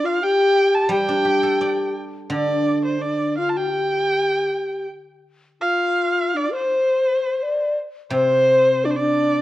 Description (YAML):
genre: chinese traditional, Chinese chamber ensemble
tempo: 80-88 BPM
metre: 4/4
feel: rubato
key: G shang mode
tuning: A4 = 442 Hz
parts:
  - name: clear erhu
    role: melody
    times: 0.0-9.4 s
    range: C5 to A5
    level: -23 LUFS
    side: right 2 dB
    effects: none
  - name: mellow low xiao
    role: second line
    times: 0.0-9.4 s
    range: D4 to D5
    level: -19 LUFS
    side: left 2 dB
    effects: none
  - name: guzheng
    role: accompaniment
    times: 0.9-9.4 s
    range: C3 to D5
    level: -26 LUFS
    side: right 1 dB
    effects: none
room: moderate recital hall reverb, RT60 1.4 s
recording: worn, warbling old tape, cassette tape, warbly pitch drift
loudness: -18 LUFS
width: side -15 dB against mid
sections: 0.0-5.2 A section; 5.2-9.4 B section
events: none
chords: none